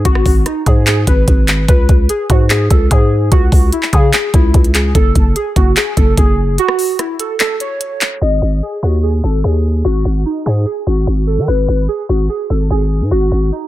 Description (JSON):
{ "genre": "hip hop, trap", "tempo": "147 BPM", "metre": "4/4", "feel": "half-time", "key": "G# phrygian", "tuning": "A4 = 440 Hz", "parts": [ { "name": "warbly lo-fi synth keys", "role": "melody", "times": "0.0-13.7 s", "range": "D#4 to D#5", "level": "-18 LUFS", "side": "equal", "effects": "chorus, low-pass filter" }, { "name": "growling 808-style bass", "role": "bass", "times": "0.0-13.5 s", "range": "F#1 to D#3", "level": "-14 LUFS", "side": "equal", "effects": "none" }, { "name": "trap drum kit", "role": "drums", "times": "0.1-8.1 s", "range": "handclaps, hi-hat, kick drum, rim click", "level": "-12 LUFS", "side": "equal", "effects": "none" } ], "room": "digital ambience", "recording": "low-pass filter", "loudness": "-11 LUFS", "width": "side -15 dB against mid", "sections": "0.0-8.2 A section; 8.2-13.7 B section", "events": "break 6.6-8.2", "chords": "0.0 G#m7; 1.7 C#5; 5.0 F#m; 8.2 G#5" }